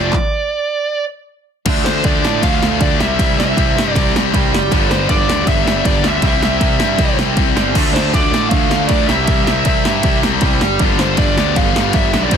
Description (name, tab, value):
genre	punk rock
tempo	158 BPM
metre	4/4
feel	straight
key	C major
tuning	A4 = 440 Hz
part	bluesy overdriven lead guitar	melody	0.0-12.4 s	C5 to F5	-20 LUFS	right 1 dB	distortion
part	raw garage guitar	riff	0.0-12.4 s	F2 to D4	-20 LUFS	right 15 dB	overdrive
part	tight distorted guitar	riff	0.0-12.4 s	G2 to F4	-18 LUFS	left 16 dB	distortion
part	fuzz picked electric bass	bass	0.0-12.4 s	F1 to A2	-21 LUFS	equal	overdrive
part	punchy analog drum machine	drums	0.1-12.4 s	crash cymbal, handclaps, kick drum, ride cymbal, snare drum	-17 LUFS	equal	overdrive
room	little or no reverb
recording	dense, heavily limited modern master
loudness	-12 LUFS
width	side -7 dB against mid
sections	0.0-1.7 A section; 1.7-12.4 B section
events	stop 0.1-1.7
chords	0.1 N.C.; 1.7 Dm; 3.0 C; 4.7 G; 6.2 C; 7.8 Dm; 9.1 C; 10.8 G